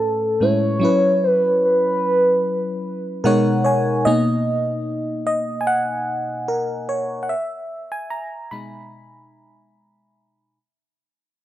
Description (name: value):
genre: R&B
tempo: 74 BPM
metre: 4/4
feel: swing 54% on 16ths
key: B major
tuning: A4 = 440 Hz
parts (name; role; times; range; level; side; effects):
- gliding portamento lead; melody; 0.0-3.2 s; A4 to C#5; -18 LUFS; equal; chorus, tape echo
- FM electric piano; accompaniment; 0.0-10.6 s; A2 to B5; -20 LUFS; equal; chorus
room: light reverb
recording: dry, gritty hardware recording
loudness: -18 LUFS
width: side -13 dB against mid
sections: 0.0-4.1 A section; 4.1-10.5 B section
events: FM electric piano fill 2.8-4.1; fade-out 4.1-10.5; FM electric piano solo 4.1-10.5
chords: 0.0 Amaj9; 0.8 F#7sus4; 3.2 B69; 7.3 B6